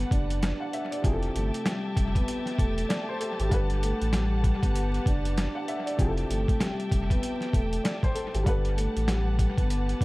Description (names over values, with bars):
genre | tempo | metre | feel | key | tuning
hip hop, boom-bap hip-hop | 97 BPM | 4/4 | swing 61% on 16ths | G major | A4 = 440 Hz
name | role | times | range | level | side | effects
vibraphone with soft mallets | melody | 0.0-10.0 s | G3 to D5 | -33 LUFS | equal | high-pass filter, low-pass filter, dub echo
dark upright piano | accompaniment | 0.0-10.0 s | C3 to F#5 | -35 LUFS | left 1 dB | cassette tape, high-pass filter, low-pass filter
warm studio string section | sustained chords | 0.0-10.0 s | G4 to A5 | -37 LUFS | left 1 dB | high-pass filter, low-pass filter
sub bass with octave | bass | 0.0-10.0 s | E1 to A1 | -28 LUFS | equal | none
boom bap sampler-style drum kit | drums | 0.0-10.0 s | hi-hat, kick drum, snare drum | -28 LUFS | equal | none
room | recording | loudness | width
small room reverb | echo-heavy mix, vinyl crackle | -24 LUFS | side -21 dB against mid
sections
0.0-10.0 A section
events
none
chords
0.0 Gmaj9; 1.0 Fmaj9; 3.5 Gmaj9; 6.0 Fmaj9; 8.5 Gmaj9